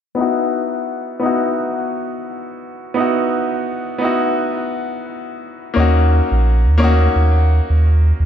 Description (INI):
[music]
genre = chillout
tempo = 86 BPM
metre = 4/4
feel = swing 57% on 16ths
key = unclear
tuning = A4 = 439 Hz
[part]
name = bright grand piano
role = accompaniment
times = 0.1-8.3 s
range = A#3 to F#4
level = -18 LUFS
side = moving between left 6 dB and right 4 dB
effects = auto-pan, low-pass filter, tape echo
[part]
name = warm sub bass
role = bass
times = 5.8-8.3 s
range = A#1 to D#2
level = -12 LUFS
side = right 1 dB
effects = none
[sound]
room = moderate lush hall reverb, RT60 1.7 s, small room ambience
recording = dark, warm production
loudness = -15 LUFS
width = side -9 dB against mid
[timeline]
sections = 0.2-8.3 A section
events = filter sweep on grand piano 0.2-8.3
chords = 0.2 Badd11; 5.8 D#m7